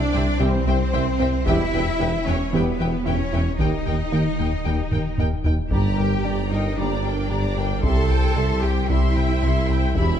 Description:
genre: cinematic, hybrid orchestral and electronic film score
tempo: 113 BPM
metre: 4/4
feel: straight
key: unclear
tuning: A4 = 440 Hz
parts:
  - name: rich symphonic violin section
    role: second line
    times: 0.0-10.2 s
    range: B4 to A5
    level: -31 LUFS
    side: left 4 dB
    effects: none
  - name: woody wave-folded pluck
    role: arpeggios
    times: 0.0-10.1 s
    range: C3 to G4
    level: -33 LUFS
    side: right 5 dB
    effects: none
  - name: smooth synth bass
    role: riff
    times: 0.0-10.1 s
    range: C2 to G3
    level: -26 LUFS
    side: left 3 dB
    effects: none
  - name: pure sine sub bass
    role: bass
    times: 0.0-10.2 s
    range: Eb1 to C2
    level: -27 LUFS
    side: left 1 dB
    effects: none
  - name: rich studio cello section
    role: bass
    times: 0.0-10.2 s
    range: B3 to A4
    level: -28 LUFS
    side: right 3 dB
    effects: none
  - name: rich symphonic violin section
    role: melody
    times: 0.1-10.2 s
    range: G5 to C6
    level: -33 LUFS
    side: left 6 dB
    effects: none
  - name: rich symphonic viola section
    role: accompaniment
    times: 0.1-10.2 s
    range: G4 to G5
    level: -33 LUFS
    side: right 1 dB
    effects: none
  - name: rich symphonic double bass section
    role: bass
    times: 0.1-10.2 s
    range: C2 to G2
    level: -28 LUFS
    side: right 3 dB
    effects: none
  - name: warm tuba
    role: bass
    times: 0.1-10.2 s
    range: E1 to Eb2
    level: -28 LUFS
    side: right 3 dB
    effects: none
  - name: clear trombone section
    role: sustained chords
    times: 0.4-10.1 s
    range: B2 to G3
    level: -35 LUFS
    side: right 4 dB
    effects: none
  - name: mellow French horn section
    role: sustained chords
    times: 0.4-10.1 s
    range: G3 to G4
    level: -34 LUFS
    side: left 3 dB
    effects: none
  - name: solo taiko drums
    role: drums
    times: 1.5-10.2 s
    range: none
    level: -26 LUFS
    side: equal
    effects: none
room: moderate scoring stage reverb, RT60 2.1 s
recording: dark, warm production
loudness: -19 LUFS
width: side -9 dB against mid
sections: 0.0-10.2 A section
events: drum fill 4.9-5.7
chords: 0.0 C; 1.5 Em; 3.6 Eb; 5.7 Gm; 7.8 C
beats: 0.40 0.93 | 1.46 2.00 2.53 3.06 | 3.59 4.12 4.65 5.18 | 5.71 6.24 6.77 7.30 | 7.83 8.37 8.90 9.43 | 9.96

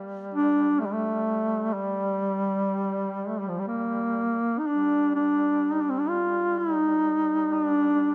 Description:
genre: caucasian folk, Caucasian lament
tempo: 59-66 BPM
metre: 3/4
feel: rubato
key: G minor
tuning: A4 = 440 Hz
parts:
  - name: warm duduk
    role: drone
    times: 0.0-8.1 s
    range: G3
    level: -38 LUFS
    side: equal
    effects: none
  - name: warm duduk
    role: melody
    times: 0.3-8.1 s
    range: F3 to F4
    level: -26 LUFS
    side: equal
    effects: none
room: light reverb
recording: none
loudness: -26 LUFS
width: mono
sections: 0.0-4.7 A section; 4.7-8.1 B section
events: none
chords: none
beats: 0.80 | 1.73 2.68 3.67 | 4.67 5.63 6.58 | 7.54

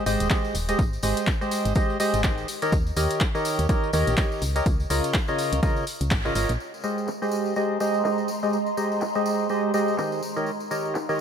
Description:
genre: piano house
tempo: 124 BPM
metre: 4/4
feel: swing 58% on 16ths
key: Ab major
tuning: A4 = 439 Hz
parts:
  - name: percussive organ stab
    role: riff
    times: 0.0-11.2 s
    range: Db3 to Eb5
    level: -25 LUFS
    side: equal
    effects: wide subtle chorus, cassette tape, sidechain pumping, ping-pong delay
  - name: solid FM bass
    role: bass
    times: 0.1-6.6 s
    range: Eb1 to Eb2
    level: -26 LUFS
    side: equal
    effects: sidechain pumping
  - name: punchy analog drum machine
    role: drums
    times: 0.1-11.1 s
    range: crash cymbal, handclaps, hi-hat, tambourine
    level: -31 LUFS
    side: equal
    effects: overdrive, low-pass filter on hats, low-pass filter on perc, low-pass filter on snare, low-pass filter on cymbals
  - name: tambourine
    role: percussion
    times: 0.1-11.2 s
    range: none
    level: -41 LUFS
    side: left 3 dB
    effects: none
  - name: electronic kick drum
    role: drums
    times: 0.3-6.2 s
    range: none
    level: -24 LUFS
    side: equal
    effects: overdrive
  - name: ethereal airy pad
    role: texture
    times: 7.2-11.2 s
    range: Ab3 to C6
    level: -30 LUFS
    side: right 3 dB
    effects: ensemble chorus, built-in reverb, sidechain pumping
room: light reverb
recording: none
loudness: -22 LUFS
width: side -8 dB against mid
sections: 0.0-6.6 A section; 6.6-11.2 B section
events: band accent 6.1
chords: 0.0 Abmaj7; 2.5 Eb7; 4.7 Db69; 6.6 Abmaj7; 10.2 Eb7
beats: 0.30 | 0.79 1.27 1.76 2.24 | 2.73 3.21 3.69 4.18 | 4.66 5.14 5.63 6.11 | 6.60 7.08 7.56 8.05 | 8.53 9.02 9.50 9.98 | 10.47 10.95

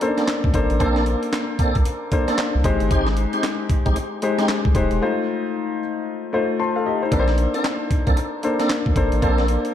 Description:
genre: R&B, new jack swing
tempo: 114 BPM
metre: 4/4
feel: swing 61% on 16ths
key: Bb major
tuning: A4 = 445 Hz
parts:
  - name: warm concert grand piano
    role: accompaniment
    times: 0.0-9.7 s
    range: Ab3 to C6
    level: -22 LUFS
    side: left 3 dB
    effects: none
  - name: breakbeat sampler-style drum kit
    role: drums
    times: 0.0-9.7 s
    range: handclaps, hi-hat, kick drum, snare drum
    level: -22 LUFS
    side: equal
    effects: none
  - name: tonewheel organ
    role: stabs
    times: 0.2-9.5 s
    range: Ab3 to A4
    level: -26 LUFS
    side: right 1 dB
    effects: overdrive, chorus vibrato, slow rotary speaker, ping-pong delay
  - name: round analog bass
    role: bass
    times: 0.4-9.6 s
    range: Eb1 to D2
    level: -22 LUFS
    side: equal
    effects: none
room: moderate echo chamber reverb, RT60 1.9 s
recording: dark, warm production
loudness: -18 LUFS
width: side -10 dB against mid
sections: 0.0-9.7 A section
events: break 5.0-7.1; grand piano fill 6.3-7.1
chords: 0.0 Bbmaj9; 2.6 Abmaj7; 5.0 F7; 7.1 Bbmaj9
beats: 0.28 | 0.80 1.33 1.85 2.38 | 2.91 3.43 3.96 4.49 | 5.01 5.54 6.07 6.59 | 7.12 7.64 8.17 8.70 | 9.22

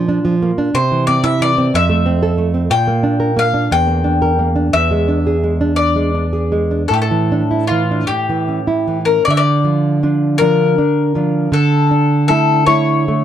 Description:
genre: romantic duo for mandolin and classical guitar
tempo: 48-62 BPM (dotted quarters)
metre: 6/8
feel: rubato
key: D minor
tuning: A4 = 439 Hz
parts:
  - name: nylon-string guitar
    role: accompaniment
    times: 0.0-13.2 s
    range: E2 to Bb4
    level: -14 LUFS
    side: right 2 dB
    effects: none
  - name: bowl-back mandolin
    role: melody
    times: 0.7-13.2 s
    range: F4 to G5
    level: -17 LUFS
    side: left 6 dB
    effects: none
room: light reverb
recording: dry, close 1970s-style studio recording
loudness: -12 LUFS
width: side -10 dB against mid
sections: 0.0-9.2 A section; 9.2-13.2 B section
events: none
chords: 0.0 Bb; 0.7 C; 1.7 Fmaj7; 2.7 Bb; 3.7 Em7b5; 4.7 E7; 6.9 Asus4; 8.1 A; 9.2 Dm; 11.5 A/D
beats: | 0.74 1.74 | 2.70 3.71 | 4.73 5.76 | 6.89 8.09 | 9.24 10.40 | 11.54 12.68

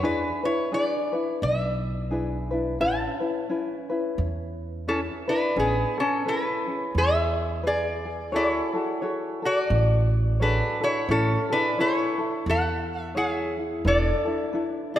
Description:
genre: Hawaiian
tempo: 87 BPM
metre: 4/4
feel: swing 59% on 8ths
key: A major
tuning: A4 = 444 Hz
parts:
  - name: lap resonator guitar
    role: melody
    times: 0.0-15.0 s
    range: B3 to A5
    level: -25 LUFS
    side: equal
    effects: none
  - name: tenor ukulele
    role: accompaniment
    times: 0.0-15.0 s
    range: C#4 to C#5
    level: -28 LUFS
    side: left 2 dB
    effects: none
  - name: upright bass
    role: bass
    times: 0.0-14.1 s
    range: E1 to E2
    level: -27 LUFS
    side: right 1 dB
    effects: none
room: moderate concert hall reverb, RT60 2.3 s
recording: none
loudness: -23 LUFS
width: side -12 dB against mid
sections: 0.0-5.6 A section; 5.6-15.0 A section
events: none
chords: 0.0 E7; 2.8 Aadd9; 5.6 Amaj9; 8.3 Dmaj9#11; 11.1 Amaj7; 13.8 E7sus4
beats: | 0.03 0.72 1.42 2.11 | 2.80 3.49 4.18 4.87 | 5.56 6.25 6.94 7.63 | 8.32 9.01 9.70 10.39 | 11.08 11.77 12.46 13.15 | 13.84 14.53

